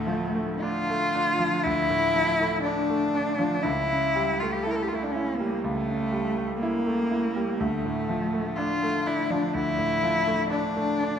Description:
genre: classical, romantic duo for cello and grand piano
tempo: 60 BPM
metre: 4/4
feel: rubato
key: D minor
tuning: A4 = 440 Hz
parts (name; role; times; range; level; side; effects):
- rich cello; melody; 0.0-11.2 s; A3 to Bb4; -25 LUFS; left 1 dB; none
- bright concert grand piano; accompaniment; 0.0-11.2 s; C#2 to E4; -28 LUFS; right 1 dB; none
room: wet scoring stage reverb, RT60 1.5 s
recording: none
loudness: -23 LUFS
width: side -8 dB against mid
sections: 0.0-11.2 A section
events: none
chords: 0.0 Dm; 3.6 A7/C#; 7.6 Dm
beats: 0.60 1.63 2.63 | 3.62 4.63 5.61 6.59 | 7.59 8.57 9.54 10.51

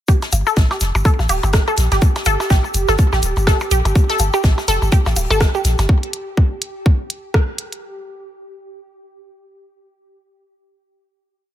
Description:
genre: minimal techno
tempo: 124 BPM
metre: 4/4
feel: swing 58% on 16ths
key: G minor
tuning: A4 = 438 Hz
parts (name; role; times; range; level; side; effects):
- resonant blip pluck; riff; 0.1-5.6 s; G4 to A4; -21 LUFS; equal; phaser, sidechain pumping, dub echo
- electronic kick drum; drums; 0.1-7.5 s; none; -14 LUFS; equal; overdrive
- open jazz drum kit; drums; 0.1-5.9 s; hi-hat, snare drum; -30 LUFS; left 2 dB; sidechain pumping on hats, high-pass filter on hats, high-pass filter on snare, high-pass filter on room
- tube shaker; percussion; 0.1-5.9 s; none; -30 LUFS; left 3 dB; none
- swarming drone; texture; 1.0-7.8 s; G4; -29 LUFS; right 4 dB; built-in reverb, sidechain pumping
- minimal click drum kit; drums; 0.2-7.8 s; hi-hat, rim click; -23 LUFS; right 1 dB; overdrive
- percussion blips; percussion; 0.2-5.9 s; none; -27 LUFS; left 1 dB; ping-pong delay
- punchy sub bass; bass; 0.3-5.9 s; D1 to Bb1; -18 LUFS; equal; sidechain pumping
room: small room ambience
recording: none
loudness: -14 LUFS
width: side -12 dB against mid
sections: 0.1-7.8 groove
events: none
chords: none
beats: | 0.08 0.57 1.05 1.53 | 2.02 2.50 2.99 3.47 | 3.96 4.44 4.92 5.41 | 5.89 6.37 6.86 7.34

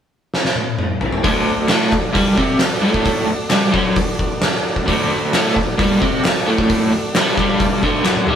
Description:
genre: garage rock duo or trio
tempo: 132 BPM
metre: 4/4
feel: straight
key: D major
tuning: A4 = 444 Hz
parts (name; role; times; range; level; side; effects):
- oversized low-tuned drum kit; drums; 0.3-8.4 s; hi-hat, kick drum, snare drum, toms; -18 LUFS; equal; none
- combo organ; sustained chords; 1.2-8.4 s; F#4 to B5; -24 LUFS; right 1 dB; none
- crunchy overdriven guitar; riff; 1.2-8.4 s; D2 to C4; -16 LUFS; equal; tremolo
- group handclap; percussion; 1.7-8.2 s; none; -28 LUFS; left 2 dB; none
room: light reverb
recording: band playing live in one room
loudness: -14 LUFS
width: side -8 dB against mid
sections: 0.0-1.2 A section; 1.2-8.4 B section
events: drum fill 0.3-1.2, 8.1; transistor combo organ fill 7.1-8.4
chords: 0.0 N.C.; 1.2 D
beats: 0.34 0.79 | 1.24 1.70 2.15 2.61 | 3.06 3.52 3.97 4.42 | 4.88 5.33 5.79 6.24 | 6.69 7.15 7.60 8.06

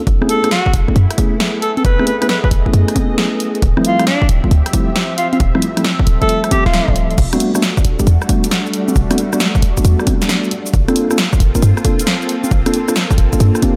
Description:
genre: UK garage, two-step garage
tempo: 135 BPM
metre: 4/4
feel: swing 67% on 16ths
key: unclear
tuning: A4 = 438 Hz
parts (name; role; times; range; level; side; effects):
- punchy analog drum machine; drums; 0.0-13.7 s; congas, crash cymbal, hi-hat, rim click, shaker, snare drum; -21 LUFS; equal; none
- soft string machine; sustained chords; 0.8-13.8 s; F3 to E5; -26 LUFS; equal; ensemble chorus, sidechain pumping
- short 808-style bass; bass; 0.1-13.5 s; D1 to G2; -16 LUFS; equal; none
- electronic kick drum; drums; 0.1-13.7 s; none; -19 LUFS; equal; none
- mellow tine electric piano; stabs; 0.2-13.8 s; F3 to E5; -21 LUFS; equal; vintage 12-bit sampler grit, delay
- clear alto saxophone; melody; 0.3-7.0 s; D4 to B4; -21 LUFS; equal; delay
room: light reverb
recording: none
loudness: -14 LUFS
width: mono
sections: 0.0-7.2 A section; 7.2-13.8 B section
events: drop 7.2-13.8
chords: 0.1 F#m11; 3.6 Dm11; 7.2 Em11; 10.5 Gm11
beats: | 0.07 0.51 0.96 1.40 | 1.85 2.29 2.73 3.18 | 3.62 4.07 4.51 4.96 | 5.40 5.85 6.29 6.74 | 7.18 7.62 8.07 8.51 | 8.96 9.40 9.85 10.29 | 10.73 11.18 11.62 12.07 | 12.51 12.96 13.40

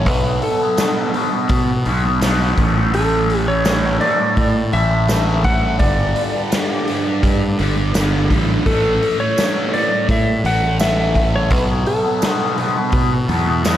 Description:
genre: psychedelic rock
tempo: 84 BPM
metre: 4/4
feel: straight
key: unclear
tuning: A4 = 444 Hz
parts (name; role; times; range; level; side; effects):
- clean lap steel guitar; melody; 0.0-12.5 s; A4 to F#5; -21 LUFS; equal; dub echo
- fuzz guitar; riff; 0.0-13.8 s; G2 to B3; -20 LUFS; equal; distortion, phaser, dub echo
- fuzz fingered electric bass; bass; 0.0-13.8 s; G1 to B2; -19 LUFS; equal; overdrive
- raw garage drum kit; drums; 0.1-13.8 s; hi-hat, kick drum, snare drum; -20 LUFS; equal; none
- tambourine; percussion; 0.8-13.8 s; none; -31 LUFS; right 8 dB; none
room: light reverb, small room ambience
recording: echo-heavy mix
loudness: -14 LUFS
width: side -11 dB against mid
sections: 0.0-13.8 A section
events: none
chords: 0.1 B5; 2.6 A5; 5.8 G5; 8.7 A5; 11.5 B5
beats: | 0.07 0.79 1.51 2.23 | 2.94 3.66 4.38 5.09 | 5.81 6.52 7.24 7.95 | 8.66 9.38 10.09 10.80 | 11.51 12.22 12.93 13.64

